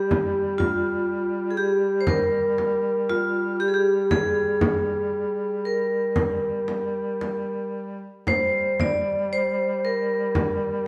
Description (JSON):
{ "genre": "caucasian folk, Caucasian lament", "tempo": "55-62 BPM", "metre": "4/4", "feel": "rubato", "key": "G phrygian", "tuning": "A4 = 442 Hz", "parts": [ { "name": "vibraphone with medium hard mallets", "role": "melody", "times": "0.0-10.9 s", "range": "F4 to D5", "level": "-25 LUFS", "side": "equal", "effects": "none" }, { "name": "warm duduk", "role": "drone", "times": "0.0-10.9 s", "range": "G3", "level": "-34 LUFS", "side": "equal", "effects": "none" }, { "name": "frame drum", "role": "percussion", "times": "0.1-10.6 s", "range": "none", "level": "-29 LUFS", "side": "equal", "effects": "none" } ], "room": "wet stone room reverb, RT60 1.4 s", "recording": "band playing live in one room", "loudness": "-24 LUFS", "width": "mono", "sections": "0.0-10.9 A section", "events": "none", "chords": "none", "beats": "| 0.11 1.08 2.07 3.08 | 4.11 5.13 6.16 7.22 | 8.28 9.32 10.35" }